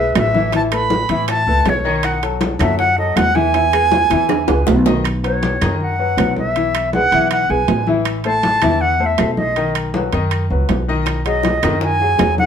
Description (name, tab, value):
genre	latin, salsa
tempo	159 BPM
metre	4/4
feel	straight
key	unclear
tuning	A4 = 440 Hz
part	bright reedy silver concert flute	melody	0.0-12.5 s	C#5 to B5	-17 LUFS	right 1 dB	none
part	clear concert grand piano	accompaniment	0.0-12.5 s	D#3 to E5	-21 LUFS	left 4 dB	none
part	upright bass	bass	0.0-12.5 s	A1 to A2	-21 LUFS	equal	none
part	bongos	percussion	0.2-4.9, 11.1-12.4 s	none	-25 LUFS	left 4 dB	none
part	claves	percussion	0.2-12.4 s	none	-30 LUFS	right 7 dB	none
part	congas	percussion	0.2-12.5 s	none	-24 LUFS	left 1 dB	none
part	timbales	percussion	0.2-12.4 s	none	-22 LUFS	right 6 dB	none
room	wet studio reverb, RT60 0.6 s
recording	band playing live in one room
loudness	-14 LUFS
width	side -8 dB against mid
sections	0.0-5.0 A section; 5.0-12.5 B section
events	drum fill 4.1-5.0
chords	0.0 E; 0.5 Aadd9; 2.0 B7; 3.5 E; 5.0 Badd9; 6.6 Eadd9/B; 8.1 Am; 9.6 B; 11.1 B6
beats	0.16 | 0.53 0.91 1.29 1.66 | 2.04 2.42 2.79 3.17 | 3.54 3.92 4.30 4.67 | 5.05 5.43 5.80 6.18 | 6.56 6.93 7.31 7.68 | 8.06 8.44 8.81 9.19 | 9.57 9.94 10.32 10.69 | 11.07 11.45 11.82 12.20